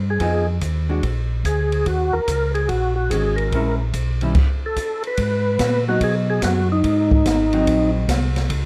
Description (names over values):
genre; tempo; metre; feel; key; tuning
soul jazz organ trio; 145 BPM; 4/4; swing 66% on 8ths; Eb minor, G# minor from 5.2 s; A4 = 440 Hz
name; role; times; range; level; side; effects
mellow tonewheel organ; bass; 0.0-8.7 s; Ab1 to B2; -24 LUFS; equal; chorus vibrato, slow rotary speaker
percussive tonewheel organ; melody; 0.1-7.9 s; D#4 to Cb5; -23 LUFS; equal; slow rotary speaker, overdrive, chorus vibrato
archtop guitar, miked and amplified; accompaniment; 0.2-8.1 s; Eb3 to Ab4; -26 LUFS; equal; none
open jazz drum kit; drums; 0.2-8.6 s; crash cymbal, hi-hat, kick drum, ride cymbal, snare drum; -26 LUFS; equal; none
room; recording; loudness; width
moderate studio reverb, RT60 0.8 s; dark, warm production; -20 LUFS; mono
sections
0.0-5.2 A section; 5.2-8.7 B section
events
none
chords
0.2 Fm7b5; 1.0 Bb7; 1.9 Ebm7; 3.5 Bbm7b5; 4.4 N.C.; 5.2 G#m7; 6.8 G#7